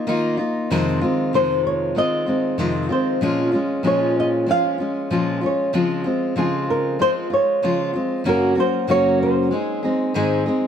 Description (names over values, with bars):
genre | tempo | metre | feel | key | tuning
pop | 95 BPM | 4/4 | swing 60% on 16ths | Db major | A4 = 439 Hz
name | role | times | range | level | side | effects
flamenco guitar | melody | 0.0-10.4 s | F4 to F5 | -21 LUFS | equal | none
fingerpicked steel-string acoustic guitar | accompaniment | 0.0-10.7 s | F2 to Ab4 | -20 LUFS | left 1 dB | none
room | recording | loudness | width
light reverb | none | -18 LUFS | side -8 dB against mid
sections
0.0-10.7 A section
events
none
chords
0.0 Ebsus2; 0.7 Fm7; 3.2 Bbm7; 5.7 Dbmaj7; 8.3 Gb; 9.5 Ab